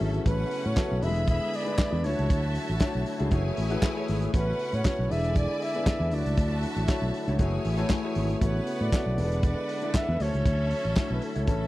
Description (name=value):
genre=disco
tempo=118 BPM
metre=4/4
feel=straight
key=unclear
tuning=A4 = 441 Hz
part: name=clear studio string section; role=second line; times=0.0-11.7 s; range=B3 to B5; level=-37 LUFS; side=equal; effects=none
part: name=warm grand piano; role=accompaniment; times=0.0-11.7 s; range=F#3 to E5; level=-33 LUFS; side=left 3 dB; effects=none
part: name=tonewheel organ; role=sustained chords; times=0.0-11.7 s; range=C#3 to C#5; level=-36 LUFS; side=right 1 dB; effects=overdrive, chorus vibrato, slow rotary speaker
part: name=fingered electric bass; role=bass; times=0.0-11.7 s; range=E1 to A2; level=-28 LUFS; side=equal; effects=none
part: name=warm soul drum kit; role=drums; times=0.0-11.6 s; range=handclaps, hi-hat, kick drum, snare drum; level=-25 LUFS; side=equal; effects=none
part: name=breathy flugelhorn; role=melody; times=0.3-11.7 s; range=A4 to E5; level=-32 LUFS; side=equal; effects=none
room=little or no reverb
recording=dry, close 1970s-style studio recording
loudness=-24 LUFS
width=side -17 dB against mid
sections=0.0-11.7 A section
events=none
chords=0.3 A69; 1.0 E7; 2.0 Dmaj9; 3.3 F#m9; 4.3 A69; 5.1 E7; 6.1 Dmaj9; 7.4 F#m9; 8.4 A69; 9.2 E7; 10.2 Dmaj9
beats=| 0.26 0.77 1.28 1.79 | 2.30 2.81 3.32 3.83 | 4.34 4.85 5.36 5.87 | 6.38 6.89 7.40 7.91 | 8.41 8.93 9.44 9.94 | 10.45 10.96 11.47